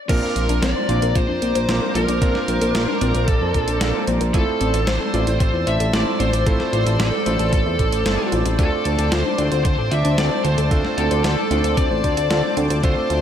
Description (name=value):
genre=synthwave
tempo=113 BPM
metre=4/4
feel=straight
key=unclear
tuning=A4 = 440 Hz
part: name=high-gain lead guitar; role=melody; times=0.1-13.2 s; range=A4 to E5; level=-24 LUFS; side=equal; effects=distortion, digital delay
part: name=chorused pulse-width pad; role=sustained chords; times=0.1-13.2 s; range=C5 to E6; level=-26 LUFS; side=left 1 dB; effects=sidechain pumping
part: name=warbly dusty pluck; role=arpeggios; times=0.1-13.2 s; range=C4 to C5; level=-28 LUFS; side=left 3 dB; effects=chorus, digital delay
part: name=clear electric grand piano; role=stabs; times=0.1-13.2 s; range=A3 to D5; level=-28 LUFS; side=right 3 dB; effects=digital delay
part: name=fat analog bass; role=bass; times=0.1-13.2 s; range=G1 to F2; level=-21 LUFS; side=equal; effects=sidechain pumping
part: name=clean 12-bit digital drum machine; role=drums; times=0.1-13.2 s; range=crash cymbal, hi-hat, snare drum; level=-26 LUFS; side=equal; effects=high-pass filter on hats, high-pass filter on snare, high-pass filter on cymbals, high-pass filter on room, gated reverb
part: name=electronic kick drum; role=drums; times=0.1-12.9 s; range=none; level=-21 LUFS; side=equal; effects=none
room=light reverb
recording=high-pass filter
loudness=-17 LUFS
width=side -9 dB against mid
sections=0.1-13.2 A section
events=none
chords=0.1 Bbadd9; 4.3 Fmaj7/A; 8.6 Dm7